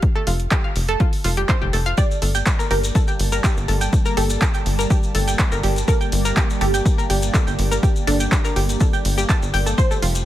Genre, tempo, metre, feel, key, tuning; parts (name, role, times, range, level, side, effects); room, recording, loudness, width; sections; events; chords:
progressive house; 123 BPM; 4/4; straight; G minor; A4 = 440 Hz
deep house drum kit; drums; 0.0-10.2 s; handclaps, hi-hat; -26 LUFS; equal; overdrive
electronic kick drum; drums; 0.0-9.9 s; -19 LUFS; equal; overdrive
analog pluck; arpeggios; 0.2-10.1 s; F4 to A5; -25 LUFS; equal; chorus, sidechain pumping, digital delay
tight sequencer bass; bass; 0.3-10.2 s; F1 to G1; -21 LUFS; equal; sidechain pumping
wide unison pluck; melody; 2.0-10.2 s; D4 to D5; -27 LUFS; right 2 dB; sidechain pumping, digital delay
lush unison pad; sustained chords; 2.3-10.2 s; G3 to A5; -28 LUFS; right 2 dB; chorus, phaser, sidechain pumping
maracas; percussion; 2.0-10.2 s; -30 LUFS; left 4 dB
little or no reverb; -17 LUFS; side -13 dB against mid
0.0-10.2 A section
0.0 Fadd9; 2.0 Gmadd9